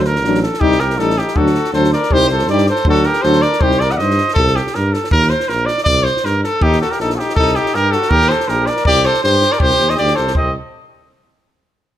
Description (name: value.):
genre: balkan folk, Balkan brass band.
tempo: 160 BPM.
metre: 2/4.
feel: swing 55% on 16ths.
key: C dorian sharp4.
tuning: A4 = 445 Hz.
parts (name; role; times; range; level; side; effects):
clear trumpet; melody; 0.0-10.5 s; G4 to F#5; -16 LUFS; right 1 dB; none.
warm tuba; bass; 0.0-10.5 s; A1 to G2; -18 LUFS; equal; none.
compact cocktail drum kit; percussion; 0.0-10.5 s; kick drum, snare drum; -21 LUFS; equal; none.
clear trombone; accompaniment; 0.2-4.1 s; F#3 to G3; -22 LUFS; right 5 dB; none.
mellow French horn; accompaniment; 0.2-4.1 s; D4 to Eb4; -21 LUFS; left 6 dB; none.
clear trumpet; second line; 0.6-4.4, 6.6-10.5 s; C4 to D5; -21 LUFS; left 5 dB; none.
room: light reverb.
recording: none.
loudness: -12 LUFS.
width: side -11 dB against mid.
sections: 0.0-4.4 A section; 4.4-10.3 B section.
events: none.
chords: 0.0 D; 0.6 Cm; 1.4 D; 2.1 Cm; 2.9 D; 3.6 Cm; 4.4 C5; 5.1 Eb5; 5.9 C5; 6.6 Eb5; 7.4 C5; 8.1 Eb5; 8.9 C5; 9.6 Cm.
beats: 0.24 | 0.61 0.99 | 1.37 1.74 | 2.12 2.49 | 2.87 3.24 | 3.62 3.99 | 4.36 4.74 | 5.11 5.48 | 5.86 6.23 | 6.61 6.98 | 7.35 7.73 | 8.10 8.48 | 8.85 9.22 | 9.60 9.97 | 10.35.